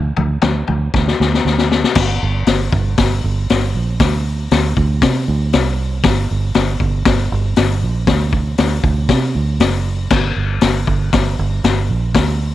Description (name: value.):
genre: garage rock duo or trio.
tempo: 118 BPM.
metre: 4/4.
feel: straight.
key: G harmonic minor.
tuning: A4 = 440 Hz.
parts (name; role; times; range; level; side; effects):
fingered electric bass; bass; 0.0-12.5 s; F#1 to C3; -17 LUFS; right 2 dB; tube saturation.
vintage drum kit; drums; 0.2-12.3 s; crash cymbal, hi-hat, kick drum, snare drum, toms; -16 LUFS; left 4 dB; none.
room: light reverb.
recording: 1960s-style stereo.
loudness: -14 LUFS.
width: side -14 dB against mid.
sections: 0.0-2.0 A section; 2.0-12.5 B section.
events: drum fill 0.9-2.0.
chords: none.